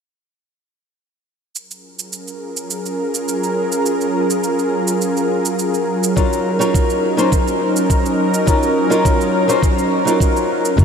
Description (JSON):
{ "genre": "sunset chillout", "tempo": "104 BPM", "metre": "4/4", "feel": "straight", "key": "Gb major", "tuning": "A4 = 441 Hz", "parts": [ { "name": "lush unison pad", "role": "sustained chords", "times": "2.2-10.8 s", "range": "Db3 to F5", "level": "-18 LUFS", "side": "right 1 dB", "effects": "chorus" }, { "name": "cabasa", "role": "drums", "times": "1.6-10.8 s", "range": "none", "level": "-27 LUFS", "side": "right 5 dB", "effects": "studio reverb" }, { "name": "nylon-string guitar", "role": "accompaniment", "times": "6.2-10.8 s", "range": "Gb3 to C5", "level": "-18 LUFS", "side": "moving between left 5 dB and right 2 dB", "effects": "auto-pan, tape echo" }, { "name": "electronic kick drum", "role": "drums", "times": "6.2-10.8 s", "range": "none", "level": "-17 LUFS", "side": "equal", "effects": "studio reverb" }, { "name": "fretless electric bass", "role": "bass", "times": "10.8 s", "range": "Gb1", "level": "-10 LUFS", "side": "equal", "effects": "ensemble chorus" } ], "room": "wet huge ambient reverb, RT60 7.8 s", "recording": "dreamy mix soaked in reverb", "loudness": "-14 LUFS", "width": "side -6 dB against mid", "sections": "1.5-10.8 A section", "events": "filter sweep on analog synth pad 1.5-10.8", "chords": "1.5 Gbmaj9; 6.2 Ebm9" }